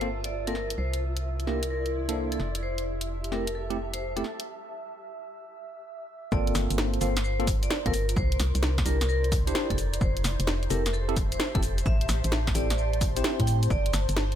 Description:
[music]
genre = UK garage, two-step garage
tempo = 130 BPM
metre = 4/4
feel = swing 67% on 16ths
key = G dorian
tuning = A4 = 441 Hz
[part]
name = vibraphone with hard mallets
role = melody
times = 0.0-13.9 s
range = A4 to G5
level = -34 LUFS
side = equal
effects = tape echo
[part]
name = airy breathy pad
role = sustained chords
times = 0.0-14.4 s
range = C5 to E5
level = -40 LUFS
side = left 1 dB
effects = chorus, sidechain pumping
[part]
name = tine electric piano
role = stabs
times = 0.0-13.7 s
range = A3 to C5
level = -33 LUFS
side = equal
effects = medium stereo tremolo, dub echo
[part]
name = organ-like FM bass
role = bass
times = 0.0-14.4 s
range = F1 to A2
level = -28 LUFS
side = equal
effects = tube saturation
[part]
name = garage drum kit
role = drums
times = 0.0-14.4 s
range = hi-hat, shaker, snare drum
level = -32 LUFS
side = equal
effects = small room ambience
[part]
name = granular cloud pad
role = texture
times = 0.0-14.4 s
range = E4 to C6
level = -39 LUFS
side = left 1 dB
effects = built-in reverb, sidechain pumping
[part]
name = electronic kick drum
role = drums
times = 6.3-13.8 s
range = none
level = -29 LUFS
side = equal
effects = small room ambience
[sound]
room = digital ambience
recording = none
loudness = -25 LUFS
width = side -10 dB against mid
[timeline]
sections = 0.0-6.3 A section; 6.3-14.4 B section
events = break 4.5-6.3; drop 6.3-14.4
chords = 0.0 Gm11; 0.8 C9; 2.4 Fmaj9; 4.5 N.C.; 6.3 Gm11; 8.2 C9; 9.8 Fmaj9; 11.9 Am7; 13.7 Gm11

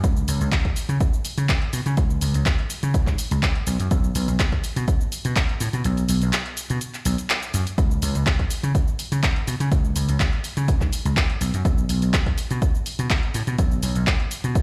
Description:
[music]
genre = filtered disco house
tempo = 124 BPM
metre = 4/4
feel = swing 53% on 16ths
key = unclear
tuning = A4 = 440 Hz
[part]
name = vintage slap bass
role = bass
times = 0.0-14.6 s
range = B1 to C#3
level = -24 LUFS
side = equal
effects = sidechain pumping
[part]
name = electronic kick drum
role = drums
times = 0.0-14.6 s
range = none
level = -24 LUFS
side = equal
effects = none
[part]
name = punchy analog drum machine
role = drums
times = 0.0-14.6 s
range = cabasa, handclaps, hi-hat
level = -30 LUFS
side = equal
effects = sidechain pumping on hats, sidechain pumping on perc
[sound]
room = digital ambience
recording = played on a big sound system in a bare room, stone room reverb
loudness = -22 LUFS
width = mono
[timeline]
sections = 0.0-14.6 A section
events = kick drops out 5.8-7.8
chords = none

